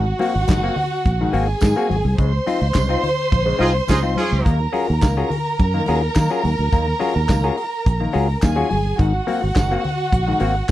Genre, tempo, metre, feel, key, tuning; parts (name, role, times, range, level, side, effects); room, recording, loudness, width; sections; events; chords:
disco; 106 BPM; 4/4; straight; Eb dorian; A4 = 440 Hz
warm studio violin section; second line; 0.0-10.7 s; Gb4 to C6; -23 LUFS; right 2 dB
mellow clav; accompaniment; 0.0-10.7 s; Ab2 to Ab4; -23 LUFS; left 4 dB
fingered electric bass; bass; 0.0-10.7 s; Gb1 to Eb3; -20 LUFS; right 1 dB
damped 70s drum kit; drums; 0.2-10.7 s; handclaps, hi-hat, kick drum, snare drum; -17 LUFS; equal
congas; percussion; 0.2-10.7 s; -30 LUFS; left 4 dB
tambourine; percussion; 0.5-10.7 s; -39 LUFS; right 9 dB
warm horn section; stabs; 3.6-4.5 s; Db4 to Ab4; -22 LUFS; right 2 dB
little or no reverb; dry, close 1970s-style studio recording; -16 LUFS; side -14 dB against mid
0.0-10.7 A section
band accent 2.2-4.5
0.0 Ab9; 2.2 Dbmaj9; 4.5 Ebm11; 9.0 Ab9